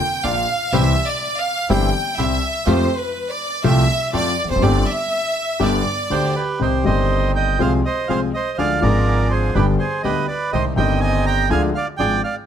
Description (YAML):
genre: tango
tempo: 123 BPM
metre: 4/4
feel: rubato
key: C major, C minor from 6.6 s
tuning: A4 = 441 Hz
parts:
  - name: bright studio violin section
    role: second line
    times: 0.0-6.4 s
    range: B4 to G5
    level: -21 LUFS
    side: right 1 dB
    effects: none
  - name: warm concert grand piano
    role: accompaniment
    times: 0.2-12.2 s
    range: G1 to Ab4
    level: -21 LUFS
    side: left 4 dB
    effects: none
  - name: bandoneon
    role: stabs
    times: 0.2-12.2 s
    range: A3 to Ab4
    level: -29 LUFS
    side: right 6 dB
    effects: none
  - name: upright bass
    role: bass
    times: 0.2-12.2 s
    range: E1 to F2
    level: -21 LUFS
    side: right 1 dB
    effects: none
  - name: bandoneon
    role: melody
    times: 6.1-12.4 s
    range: G4 to Bb5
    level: -21 LUFS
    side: right 4 dB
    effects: none
room: light reverb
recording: close, detailed microphones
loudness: -16 LUFS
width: side -9 dB against mid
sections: 0.0-6.6 A section; 6.6-12.5 B section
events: violin section solo 0.0-6.6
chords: 0.0 Bb; 0.7 C; 2.7 Fadd9; 4.6 Gsus4; 5.6 G; 6.6 Cm; 7.6 Fm/C; 8.6 Ddim; 9.5 G; 10.5 Cm; 11.5 Ddim